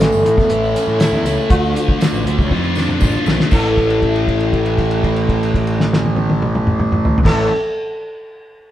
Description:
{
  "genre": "psychedelic rock",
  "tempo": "119 BPM",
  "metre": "4/4",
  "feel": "straight",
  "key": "unclear",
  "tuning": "A4 = 441 Hz",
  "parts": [
    { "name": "sitar", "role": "melody", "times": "0.0-7.5 s", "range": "F4 to A4", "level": "-20 LUFS", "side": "right 1 dB", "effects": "none" },
    { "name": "fuzz guitar", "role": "riff", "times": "0.0-7.5 s", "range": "A2 to F4", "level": "-19 LUFS", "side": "equal", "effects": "distortion, phaser" },
    { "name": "fuzz picked electric bass", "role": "bass", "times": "0.0-7.5 s", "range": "G1 to A2", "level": "-20 LUFS", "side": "equal", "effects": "overdrive" },
    { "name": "cloth-damped thuddy drum kit", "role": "drums", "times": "0.0-7.4 s", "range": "crash cymbal, hi-hat, kick drum, snare drum, toms", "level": "-18 LUFS", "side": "equal", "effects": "none" },
    { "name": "tambourine", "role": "percussion", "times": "0.1-3.8 s", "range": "none", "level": "-39 LUFS", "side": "right 6 dB", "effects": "none" }
  ],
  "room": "moderate large studio reverb, RT60 0.9 s",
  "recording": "band playing live in one room",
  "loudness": "-13 LUFS",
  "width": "side -12 dB against mid",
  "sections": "0.0-3.5 A section; 3.5-7.6 B section",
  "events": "drum fill 2.5-3.5; held note 3.5-7.3",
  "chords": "0.0 A; 1.5 Dm; 3.5 A5"
}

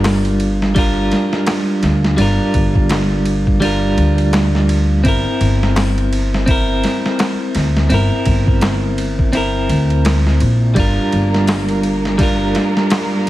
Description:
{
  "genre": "trip hop",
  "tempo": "84 BPM",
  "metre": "4/4",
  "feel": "swing 58% on 16ths",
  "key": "G dorian",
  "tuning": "A4 = 439 Hz",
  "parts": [
    { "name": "clean electric guitar", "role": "accompaniment", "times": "0.0-13.3 s", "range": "G3 to Bb4", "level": "-17 LUFS", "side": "equal", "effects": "tremolo, vintage 12-bit sampler grit, tape echo" },
    { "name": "upright bass", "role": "bass", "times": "0.0-12.5 s", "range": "G1 to D2", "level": "-17 LUFS", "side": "equal", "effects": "none" },
    { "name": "dusty soul sampler-style drum kit", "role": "drums", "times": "0.0-13.3 s", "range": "hi-hat, kick drum, ride cymbal, snare drum", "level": "-19 LUFS", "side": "equal", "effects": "none" },
    { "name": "darbuka", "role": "percussion", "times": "0.0-13.1 s", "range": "none", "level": "-26 LUFS", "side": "left 2 dB", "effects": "none" },
    { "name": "rich chamber violin section", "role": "sustained chords", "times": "10.8-13.3 s", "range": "Bb3 to Bb4", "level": "-26 LUFS", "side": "right 1 dB", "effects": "none" }
  ],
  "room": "little or no reverb",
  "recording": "vinyl crackle",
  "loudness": "-13 LUFS",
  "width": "side -15 dB against mid",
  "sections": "0.0-13.3 A section",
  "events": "none",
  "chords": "0.0 Gm7; 5.1 C7/G; 10.8 Gm7"
}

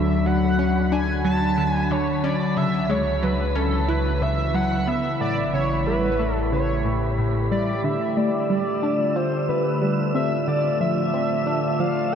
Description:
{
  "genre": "ambient, sequencer-driven space music",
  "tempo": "91 BPM",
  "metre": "4/4",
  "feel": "straight",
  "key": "D dorian from 7.8 s",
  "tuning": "A4 = 442 Hz",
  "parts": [
    { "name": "pulse-width lead", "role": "melody", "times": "0.0-12.2 s", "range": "A4 to A5", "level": "-25 LUFS", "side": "equal", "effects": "chorus, ping-pong delay" },
    { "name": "evolving wavetable pad", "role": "sustained chords", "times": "0.0-12.2 s", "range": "A2 to E5", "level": "-24 LUFS", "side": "left 1 dB", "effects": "chorus, built-in reverb" },
    { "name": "tight sequenced synth", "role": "riff", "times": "0.0-12.2 s", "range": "A2 to F4", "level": "-26 LUFS", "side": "equal", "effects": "chorus, ping-pong delay" },
    { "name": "round analog bass", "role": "bass", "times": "0.0-7.8 s", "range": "A1 to D2", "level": "-27 LUFS", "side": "equal", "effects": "none" },
    { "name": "wind-like tuned noise texture", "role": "texture", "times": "0.0-12.2 s", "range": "B5 to E6", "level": "-35 LUFS", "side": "right 2 dB", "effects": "built-in reverb" }
  ],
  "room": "wet huge ambient reverb, RT60 8.5 s",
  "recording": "none",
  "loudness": "-20 LUFS",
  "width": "side -8 dB against mid",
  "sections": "0.0-7.8 A section; 7.8-12.2 B section",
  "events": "none",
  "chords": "0.0 D; 2.6 C#m; 5.2 A7; 7.8 Dm"
}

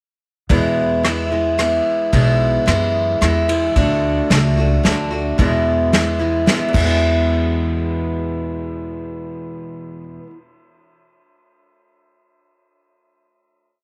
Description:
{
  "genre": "honky-tonk and classic country",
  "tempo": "110 BPM",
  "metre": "3/4",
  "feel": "straight",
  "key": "E mixolydian",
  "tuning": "A4 = 440 Hz",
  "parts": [
    { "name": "picked acoustic archtop guitar", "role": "accompaniment", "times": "0.5-10.4 s", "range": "E2 to F#4", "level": "-20 LUFS", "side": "equal", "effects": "none" },
    { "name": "upright bass", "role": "bass", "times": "0.5-10.0 s", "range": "B1 to F#2", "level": "-23 LUFS", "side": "equal", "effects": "none" },
    { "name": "unplugged drum kit", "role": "drums", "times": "0.5-6.9 s", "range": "crash cymbal, kick drum, ride cymbal, rim click, snare drum", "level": "-24 LUFS", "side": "equal", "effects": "none" }
  ],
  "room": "moderate echo chamber reverb, RT60 1.5 s, small room ambience",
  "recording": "none",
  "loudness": "-17 LUFS",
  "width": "mono",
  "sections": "0.5-7.0 interlude; 7.0-10.3 final hit",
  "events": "none",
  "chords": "0.5 E; 3.8 D; 5.4 E"
}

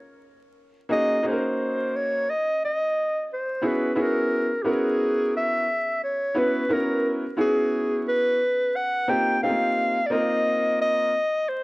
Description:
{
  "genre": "hip hop",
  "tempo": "88 BPM",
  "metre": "4/4",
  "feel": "swing 62% on 16ths",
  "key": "unclear",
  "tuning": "A4 = 441 Hz",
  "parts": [
    { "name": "warm clarinet", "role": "melody", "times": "0.9-11.6 s", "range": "G4 to G5", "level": "-23 LUFS", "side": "equal", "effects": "none" },
    { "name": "clear upright piano", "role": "accompaniment", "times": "0.9-11.1 s", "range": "A3 to Cb5", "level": "-25 LUFS", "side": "equal", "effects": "none" }
  ],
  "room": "light reverb, small room ambience",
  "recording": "worn, warbling old tape, cassette tape, vinyl crackle, warbly pitch drift",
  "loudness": "-21 LUFS",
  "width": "side -22 dB against mid",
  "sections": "0.0-3.6 A section; 3.6-11.6 B section",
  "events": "none",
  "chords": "0.0 N.C.; 0.9 Ab9sus4; 3.6 Gb9sus4; 9.1 F9sus4"
}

